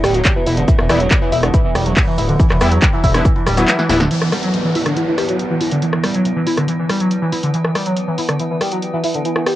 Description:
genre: driving peak-time techno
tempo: 140 BPM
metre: 4/4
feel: straight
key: E minor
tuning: A4 = 440 Hz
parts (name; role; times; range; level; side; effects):
- overdriven synth lead; riff; 0.0-9.5 s; D3 to E4; -18 LUFS; equal; distortion, phaser, wide subtle chorus, cassette tape, sidechain pumping, tape echo
- gritty driven synth bass; bass; 0.0-4.1 s; D1 to E2; -18 LUFS; equal; sidechain pumping
- metallic inharmonic drone; drone; 0.0-9.6 s; E3 to B3; -25 LUFS; equal; chorus, built-in reverb, sidechain pumping, cassette tape
- open jazz drum kit; drums; 0.0-4.0 s; hi-hat, shaker, snare drum; -35 LUFS; left 1 dB; none
- punchy analog drum machine; drums; 0.0-9.6 s; handclaps, hi-hat, rim click, snare drum; -20 LUFS; equal; cassette tape
- electronic kick drum; drums; 0.3-3.3 s; none; -15 LUFS; equal; cassette tape
- supersaw stab; stabs; 0.9-4.0 s; E3 to E4; -21 LUFS; left 1 dB; sidechain pumping, low-pass filter, cassette tape, tape echo
- downlifter; sound effects; 4.1-7.5 s; none; -27 LUFS; right 1 dB; none
room: moderate booth ambience, RT60 0.2 s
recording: home recording on cassette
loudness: -14 LUFS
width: side -14 dB against mid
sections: 0.0-4.1 A section; 4.1-9.6 B section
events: kick drops out 3.7-4.1; drum fill 3.7-4.1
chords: 0.0 E5

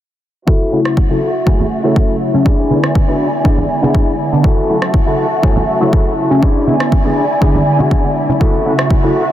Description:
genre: filtered disco house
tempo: 121 BPM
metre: 4/4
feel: straight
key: F# minor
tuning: A4 = 438 Hz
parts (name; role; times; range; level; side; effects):
- warm symphonic violin section; sustained chords; 0.5-9.3 s; E4 to G#5; -19 LUFS; equal; sidechain pumping, low-pass filter
- mellow electric guitar; riff; 0.5-9.2 s; D4 to A4; -19 LUFS; left 2 dB; sidechain pumping, low-pass filter
- electronic kick drum; drums; 0.5-9.0 s; none; -13 LUFS; equal; none
- maracas and congas; percussion; 0.5-9.3 s; none; -22 LUFS; right 2 dB; sidechain pumping on perc, low-pass filter on perc
- funky polysynth comp; accompaniment; 0.7-9.1 s; C#3 to G#5; -16 LUFS; equal; chorus, phaser, cassette tape, sidechain pumping, low-pass filter
- electronic rim click; drums; 0.9-8.9 s; none; -26 LUFS; equal; none
room: moderate huge ambient reverb, RT60 7.5 s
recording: dreamy mix soaked in reverb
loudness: -11 LUFS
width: side -12 dB against mid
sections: 0.5-9.3 A section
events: filter sweep 0.5-9.3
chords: 0.5 F#m7; 2.5 E7; 4.4 F#m7; 6.4 E7; 8.4 F#m7

